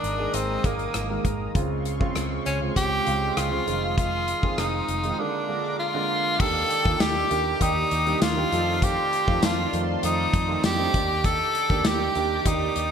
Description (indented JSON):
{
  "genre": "1980s-style pop",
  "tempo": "99 BPM",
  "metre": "4/4",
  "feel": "straight",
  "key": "Eb lydian from 6.4 s",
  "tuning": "A4 = 441 Hz",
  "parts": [
    { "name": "breathy tenor saxophone", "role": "melody", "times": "0.0-12.9 s", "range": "Bb3 to A4", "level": "-25 LUFS", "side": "equal", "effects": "ping-pong delay" },
    { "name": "warm grand piano", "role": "accompaniment", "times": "0.0-12.9 s", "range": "Db3 to D5", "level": "-30 LUFS", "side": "right 5 dB", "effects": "wide subtle chorus" },
    { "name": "lush unison pad", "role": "sustained chords", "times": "0.0-12.9 s", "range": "Ab3 to Eb6", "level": "-33 LUFS", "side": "equal", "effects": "chorus, phaser" },
    { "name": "vintage muted fingered electric bass", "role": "bass", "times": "0.0-12.9 s", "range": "F1 to F2", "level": "-30 LUFS", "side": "equal", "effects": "none" },
    { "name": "modern studio drum kit", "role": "drums", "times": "0.0-12.9 s", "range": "crash cymbal, hi-hat, kick drum, rim click, snare drum, tambourine", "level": "-27 LUFS", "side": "left 1 dB", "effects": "gated reverb" },
    { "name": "analog synth brass", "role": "stabs", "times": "8.1-8.8 s", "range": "G3 to A4", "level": "-34 LUFS", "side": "equal", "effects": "chorus" }
  ],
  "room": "moderate plate reverb, RT60 2.0 s, small room ambience",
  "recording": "bright 1980s-style digital production",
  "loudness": "-22 LUFS",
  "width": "side -7 dB against mid",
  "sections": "0.0-6.4 A section; 6.4-12.9 B section",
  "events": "none",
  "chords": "0.0 Absus2; 1.6 Dbmaj7; 3.7 Fm7; 5.2 Bb7; 6.4 Ebmaj7; 8.5 F7; 10.9 Ebmaj7"
}